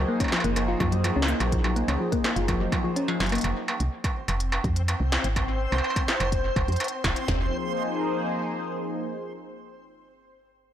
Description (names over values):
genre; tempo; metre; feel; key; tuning
IDM; 125 BPM; 4/4; straight; F phrygian; A4 = 441 Hz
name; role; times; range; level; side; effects
phased analog pad; sustained chords; 0.0-3.4, 7.5-9.2 s; F3 to C5; -30 LUFS; equal; phaser, chorus, sidechain pumping
thumb-piano-like synth pluck; arpeggios; 0.0-3.4 s; F3 to F4; -28 LUFS; left 2 dB; chorus, tape echo
woody FM bass; bass; 0.0-7.5 s; Eb1 to Gb2; -26 LUFS; equal; none
glitchy drum kit; drums; 0.2-7.4 s; kick drum, snare drum, toms; -29 LUFS; equal; none
industrial drum kit; drums; 0.2-7.3 s; hi-hat, snare drum, struck metal; -29 LUFS; right 1 dB; tape echo
backwards swelling texture; texture; 4.2-7.3 s; C4 to C5; -32 LUFS; left 1 dB; built-in reverb
room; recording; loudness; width
light reverb; blown-out, overdriven recording, overdrive; -23 LUFS; side -10 dB against mid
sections
0.0-3.4 A section; 3.4-7.3 B section; 7.3-9.2 C section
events
kick drops out 3.0-3.4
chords
0.0 Gbmaj7; 3.4 F5; 7.3 Fm7